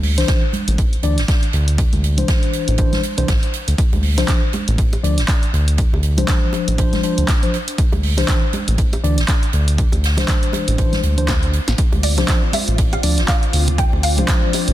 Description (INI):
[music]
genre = deep house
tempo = 120 BPM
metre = 4/4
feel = swing 58% on 16ths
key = D minor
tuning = A4 = 439 Hz
[part]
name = round analog bass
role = bass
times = 0.0-14.7 s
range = A1 to D2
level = -17 LUFS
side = equal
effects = none
[part]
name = soft-mallet drum kit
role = drums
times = 0.0-14.7 s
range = hi-hat, snare drum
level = -28 LUFS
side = right 2 dB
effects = high-pass filter on hats, high-pass filter on snare, high-pass filter on room
[part]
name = mellow tine electric piano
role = stabs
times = 0.2-14.7 s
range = E3 to D5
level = -23 LUFS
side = left 2 dB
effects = slow stereo tremolo, sidechain pumping, dub echo
[part]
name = punchy analog drum machine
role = drums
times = 0.2-14.7 s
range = handclaps, hi-hat, snare drum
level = -24 LUFS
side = right 1 dB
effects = none
[part]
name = electronic kick drum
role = drums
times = 0.3-14.4 s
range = none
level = -18 LUFS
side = equal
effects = none
[part]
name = congas and bongos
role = percussion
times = 0.5-14.7 s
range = none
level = -27 LUFS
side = right 4 dB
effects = none
[part]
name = soft string machine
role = sustained chords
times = 11.8-14.7 s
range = C4 to D5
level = -28 LUFS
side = equal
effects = ensemble chorus, sidechain pumping
[part]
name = mallet-like synth pluck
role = melody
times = 12.0-14.7 s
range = D5 to G5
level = -26 LUFS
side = equal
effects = ensemble chorus, ping-pong delay
[sound]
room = studio reverb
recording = dense, heavily limited modern master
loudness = -15 LUFS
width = side -14 dB against mid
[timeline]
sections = 0.0-14.7 A section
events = drum fill 11.3-11.8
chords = 0.0 Cadd9; 3.8 Dm7; 7.8 Cadd9; 11.8 Dm7